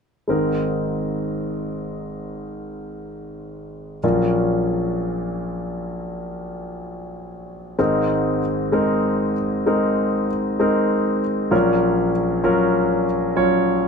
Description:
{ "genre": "folk", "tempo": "64 BPM", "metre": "4/4", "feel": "straight", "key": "Ab major", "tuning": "A4 = 440 Hz", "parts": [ { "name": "warm concert grand piano", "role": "solo", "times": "0.3-13.9 s", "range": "Ab1 to Db5", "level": "-19 LUFS", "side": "equal", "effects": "none" } ], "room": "moderate studio ambience, RT60 0.5 s", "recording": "none", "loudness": "-18 LUFS", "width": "side -5 dB against mid", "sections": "0.3-7.8 A section; 7.8-13.9 B section", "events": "none", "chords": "0.3 Abadd9; 4.0 Gbmaj7/Bb; 7.8 Abadd9; 11.5 Gbmaj7/Bb", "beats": "| 0.29 1.23 2.17 3.10 | 4.03 4.96 5.90 6.85 | 7.79 8.73 9.67 10.60 | 11.53 12.46 13.38" }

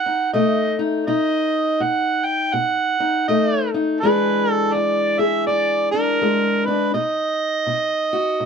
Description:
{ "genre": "acoustic country blues, solo or duo", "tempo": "82 BPM", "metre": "4/4", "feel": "swing 62% on 8ths", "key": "unclear", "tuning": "A4 = 440 Hz", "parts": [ { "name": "overdriven harmonica", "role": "melody", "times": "0.0-8.5 s", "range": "A#4 to G5", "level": "-20 LUFS", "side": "right 3 dB", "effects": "none" }, { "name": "fingerpicked steel-string acoustic guitar", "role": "accompaniment", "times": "0.0-8.5 s", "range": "E2 to G#4", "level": "-21 LUFS", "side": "left 3 dB", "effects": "none" } ], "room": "moderate small room ambience, RT60 0.5 s", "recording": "none", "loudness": "-17 LUFS", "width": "side -6 dB against mid", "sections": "0.0-8.5 A section", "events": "none", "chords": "0.0 B7; 4.0 E7; 6.9 B", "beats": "0.35 | 1.08 1.81 2.54 3.28 | 4.01 4.74 5.47 6.20 | 6.93 7.66 8.39" }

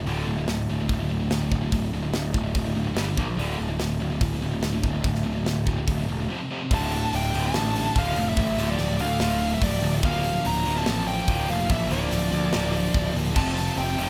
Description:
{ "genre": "heavy metal", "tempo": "144 BPM", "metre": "4/4", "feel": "straight", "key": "D minor", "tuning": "A4 = 440 Hz", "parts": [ { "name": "heavy high-gain guitar", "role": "riff", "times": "0.0-14.1 s", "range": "D2 to Bb3", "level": "-36 LUFS", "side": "equal", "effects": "distortion" }, { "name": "high-gain distorted guitar", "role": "riff", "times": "0.0-14.1 s", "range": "D2 to Bb3", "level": "-32 LUFS", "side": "equal", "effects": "distortion" }, { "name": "fuzz picked electric bass", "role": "bass", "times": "0.0-14.1 s", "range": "D1 to D2", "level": "-30 LUFS", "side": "equal", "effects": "overdrive" }, { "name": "tight metal drum kit", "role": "drums", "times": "0.1-14.1 s", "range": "crash cymbal, hi-hat, kick drum, snare drum", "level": "-31 LUFS", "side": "equal", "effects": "none" }, { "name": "bluesy overdriven lead guitar", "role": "melody", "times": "6.7-14.1 s", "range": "D5 to Bb5", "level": "-31 LUFS", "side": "equal", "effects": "distortion" }, { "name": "high-gain lead guitar", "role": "second line", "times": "6.7-14.1 s", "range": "F3 to D4", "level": "-35 LUFS", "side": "equal", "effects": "distortion" } ], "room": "moderate large studio reverb, RT60 1.5 s", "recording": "band playing live in one room", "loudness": "-25 LUFS", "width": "mono", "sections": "0.0-6.7 A section; 6.7-14.1 B section", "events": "break 6.3-6.7; half time 6.7-14.1", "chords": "0.1 D5; 3.0 G5; 3.2 Bb5; 3.4 D5; 6.3 F5; 6.7 Dm; 10.0 Bb/D; 13.4 F", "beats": "| 0.07 0.48 0.90 1.31 | 1.73 2.14 2.56 2.97 | 3.39 3.81 4.22 4.63 | 5.05 5.47 5.88 6.30 | 6.71 7.13 7.54 7.96 | 8.38 8.79 9.21 9.62 | 10.04 10.46 10.87 11.29 | 11.70 12.12 12.54 12.95 | 13.37 13.78" }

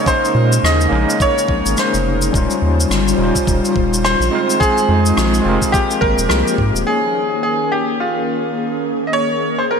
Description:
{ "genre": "sunset chillout", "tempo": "106 BPM", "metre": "4/4", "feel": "swing 58% on 16ths", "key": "Bb dorian", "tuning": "A4 = 445 Hz", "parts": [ { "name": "bright baby grand piano", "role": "melody", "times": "0.0-9.8 s", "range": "F4 to Eb5", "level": "-18 LUFS", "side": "equal", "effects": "ping-pong delay, shimmer reverb" }, { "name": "overdriven tine electric piano", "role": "accompaniment", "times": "0.0-9.8 s", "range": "G3 to F5", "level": "-21 LUFS", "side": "moving between left 7 dB and right 5 dB", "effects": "fast tremolo, auto-pan, low-pass filter, ping-pong delay, shimmer reverb" }, { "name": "airy breathy pad", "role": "sustained chords", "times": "0.0-9.8 s", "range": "Db3 to C5", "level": "-21 LUFS", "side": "equal", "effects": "chorus, shimmer reverb" }, { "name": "cabasa and rim click", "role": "drums", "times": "0.1-6.8 s", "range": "none", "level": "-23 LUFS", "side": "left 1 dB", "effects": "low-pass filter on snare, low-pass filter on perc, low-pass filter on room, gated reverb" }, { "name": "electronic kick drum", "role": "drums", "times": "0.1-6.7 s", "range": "none", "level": "-20 LUFS", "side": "equal", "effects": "none" }, { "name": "round analog bass", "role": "bass", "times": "0.3-6.8 s", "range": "Eb1 to Bb2", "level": "-18 LUFS", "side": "equal", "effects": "none" } ], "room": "moderate lush hall reverb, RT60 2.0 s, small room ambience", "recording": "bright 1980s-style digital production", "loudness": "-13 LUFS", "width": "side -6 dB against mid", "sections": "0.0-6.9 A section; 6.9-9.8 B section", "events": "filter sweep on tine electric piano 6.9-9.8", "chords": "0.0 Bbm11; 2.3 Eb13; 4.3 Fm7; 5.7 Abmaj13; 6.9 Bbm7", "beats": "| 0.08 0.64 1.21 1.77 | 2.34 2.91 3.47 4.04 | 4.61 5.17 5.74 6.30 | 6.87 7.43 8.00 8.57 | 9.13 9.70" }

